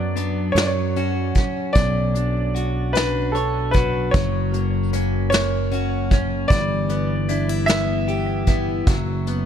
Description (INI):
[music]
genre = six-eight pop ballad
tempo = 50 BPM (dotted quarters)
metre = 6/8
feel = straight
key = B minor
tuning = A4 = 440 Hz
[part]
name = clear baby grand piano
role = melody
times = 0.0-9.5 s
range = A4 to E5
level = -25 LUFS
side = equal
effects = tape echo
[part]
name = direct-recorded clean electric guitar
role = accompaniment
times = 0.0-9.5 s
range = B2 to C#5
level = -26 LUFS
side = equal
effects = double-tracked left and right
[part]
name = picked plugged-in steel-string acoustic guitar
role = arpeggios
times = 0.0-9.5 s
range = E3 to G4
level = -29 LUFS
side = left 8 dB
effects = tape echo
[part]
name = fingered electric bass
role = bass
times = 0.0-9.5 s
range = F#1 to F#2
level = -23 LUFS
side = equal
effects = none
[part]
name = vintage brush drum kit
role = drums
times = 0.2-9.5 s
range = hi-hat, kick drum, snare drum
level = -21 LUFS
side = equal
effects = none
[sound]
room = little or no reverb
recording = none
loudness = -18 LUFS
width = side -9 dB against mid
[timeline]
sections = 0.0-9.5 A section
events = none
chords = 0.0 Bm/F#; 0.6 F#5; 1.8 Bmadd9; 4.1 F#; 6.5 Em/G; 8.9 F#sus4